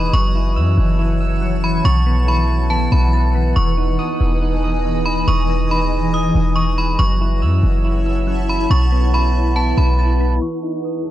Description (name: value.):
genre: hip hop.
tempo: 140 BPM.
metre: 4/4.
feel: half-time.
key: E major.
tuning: A4 = 440 Hz.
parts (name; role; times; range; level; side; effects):
metallic FM bell; melody; 0.0-10.8 s; A5 to D#6; -23 LUFS; equal; chorus, low-pass filter, tape echo.
granular cloud pad; sustained chords; 0.0-11.1 s; E2 to A5; -22 LUFS; equal; built-in reverb.
soft electric-piano-like synth keys; arpeggios; 0.0-11.1 s; E3 to E6; -24 LUFS; right 1 dB; chorus, tremolo, low-pass filter, tape echo.
clean 808-style bass; bass; 0.0-10.4 s; E1 to F#2; -16 LUFS; equal; none.
room: digital ambience.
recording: dry, gritty hardware recording, low-pass filter.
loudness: -14 LUFS.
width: side -13 dB against mid.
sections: 0.0-10.4 A section.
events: none.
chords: 0.1 F#m7; 1.8 B7sus4; 3.6 Emaj7; 7.0 F#m7; 8.7 B7sus4; 10.4 Emaj7.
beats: | 0.13 0.56 0.99 1.42 | 1.85 2.28 2.71 3.13 | 3.56 3.99 4.42 4.85 | 5.28 5.71 6.13 6.56 | 6.99 7.42 7.85 8.28 | 8.71 9.13 9.56 9.99 | 10.42 10.85.